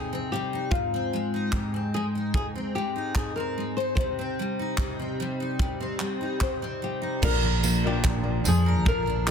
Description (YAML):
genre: acoustic pop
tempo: 74 BPM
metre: 4/4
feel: straight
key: C minor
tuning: A4 = 440 Hz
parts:
  - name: flamenco guitar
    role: melody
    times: 0.0-9.3 s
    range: F4 to C5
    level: -30 LUFS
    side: left 3 dB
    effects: none
  - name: picked steel-string acoustic guitar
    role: accompaniment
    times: 0.0-9.3 s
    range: Ab2 to Bb4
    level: -29 LUFS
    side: left 1 dB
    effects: double-tracked left and right
  - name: modern studio drum kit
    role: drums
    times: 0.7-9.3 s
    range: crash cymbal, handclaps, kick drum, tambourine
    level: -28 LUFS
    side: equal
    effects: soft clipping on snare
  - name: felt-muted upright piano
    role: accompaniment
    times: 7.2-9.3 s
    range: Bb3 to D5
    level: -34 LUFS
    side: left 5 dB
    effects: none
  - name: picked steel-string acoustic guitar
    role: arpeggios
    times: 7.2-9.3 s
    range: F3 to D4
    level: -32 LUFS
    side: right 8 dB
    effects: none
  - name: upright bass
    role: bass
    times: 7.2-9.3 s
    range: Bb1 to F2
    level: -26 LUFS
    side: equal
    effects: none
room: light reverb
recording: dense, heavily limited modern master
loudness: -24 LUFS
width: side -7 dB against mid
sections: 0.0-7.2 A section; 7.2-9.3 B section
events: none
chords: 0.0 Cm; 0.7 Ab; 7.2 Bb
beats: | 0.72 1.53 2.34 3.16 | 3.97 4.79 5.60 6.42 | 7.23 8.04 8.86